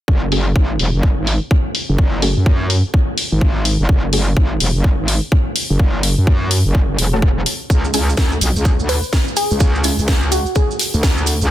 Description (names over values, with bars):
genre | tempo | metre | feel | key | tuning
bass house | 126 BPM | 4/4 | swing 62% on 16ths | F# minor | A4 = 444 Hz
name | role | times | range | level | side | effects
metallic wobble bass | bass | 0.1-11.5 s | E1 to F#2 | -17 LUFS | equal | distortion, chorus, sidechain pumping
electronic kick drum | drums | 0.1-11.2 s | none | -17 LUFS | equal | none
orchestra-hit-like synth stab | stabs | 0.3-10.0 s | G#3 to A4 | -24 LUFS | equal | built-in reverb, vintage 12-bit sampler grit, sidechain pumping, dub echo
house drum kit | drums | 0.3-11.4 s | hi-hat, snare drum | -20 LUFS | left 1 dB | low-pass filter on hats, low-pass filter on snare
maracas | percussion | 7.7-11.5 s | none | -26 LUFS | right 6 dB | none
glassy wavetable pluck | melody | 8.9-11.0 s | F#4 to B4 | -23 LUFS | left 1 dB | chorus, dub echo
room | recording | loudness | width
little or no reverb | dense, heavily limited modern master | -14 LUFS | side -13 dB against mid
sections
0.1-11.5 A section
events
none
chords
0.1 F#madd9; 7.7 C#m